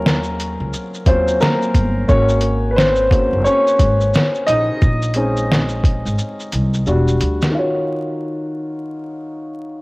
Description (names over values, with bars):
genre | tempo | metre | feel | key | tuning
lo-fi hip hop | 88 BPM | 4/4 | swing 61% on 16ths | Eb dorian | A4 = 439 Hz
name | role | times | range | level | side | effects
warm upright piano | accompaniment | 0.0-9.8 s | Eb3 to Eb5 | -18 LUFS | equal | low-pass filter, cassette tape
upright bass | bass | 0.0-7.5 s | E1 to Eb2 | -20 LUFS | equal | tube saturation
lo-fi sampler-style drum kit | drums | 0.1-7.5 s | hi-hat, kick drum, shaker, snare drum | -17 LUFS | equal | overdrive, cassette tape
room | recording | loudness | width
moderate spring reverb, RT60 2.3 s | home recording on cassette, vinyl crackle | -14 LUFS | side -23 dB against mid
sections
0.0-7.5 A section; 7.5-9.8 B section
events
upright piano solo 0.0-7.5; drum fill 6.2-7.5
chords
0.0 Ebm7; 2.1 Ab7sus4; 4.8 Bbm11; 6.9 Em7; 7.5 Ebm7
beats
0.04 0.72 1.41 | 2.09 2.77 3.45 4.13 | 4.82 5.50 6.18 6.86 | 7.54 8.22 8.91 9.59